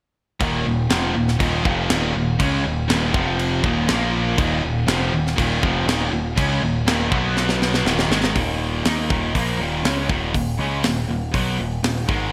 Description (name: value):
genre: hard rock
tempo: 121 BPM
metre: 4/4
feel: straight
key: Eb minor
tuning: A4 = 440 Hz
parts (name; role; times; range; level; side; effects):
- distorted electric guitar; riff; 0.4-12.3 s; Eb2 to Eb4; -28 LUFS; equal; overdrive
- distorted electric guitar; riff; 0.4-12.3 s; Eb2 to Eb4; -29 LUFS; equal; distortion
- high-gain distorted guitar; riff; 0.4-8.3 s; Eb2 to Db4; -28 LUFS; equal; distortion
- growling picked electric bass; bass; 0.4-12.3 s; Eb1 to Eb2; -27 LUFS; equal; overdrive
- tight metal drum kit; drums; 0.4-12.2 s; crash cymbal, hi-hat, kick drum, snare drum; -26 LUFS; equal; gated reverb
room: moderate plate reverb, RT60 1.9 s, studio reverb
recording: bright 1980s-style digital production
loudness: -21 LUFS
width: mono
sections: 0.4-8.4 A section; 8.4-12.3 B section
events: drum fill 7.4-8.4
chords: 0.4 Eb5; 3.1 F5; 3.6 Eb5; 3.9 Bb5; 4.4 Eb5; 7.1 B5; 7.9 Eb5; 8.4 Ebm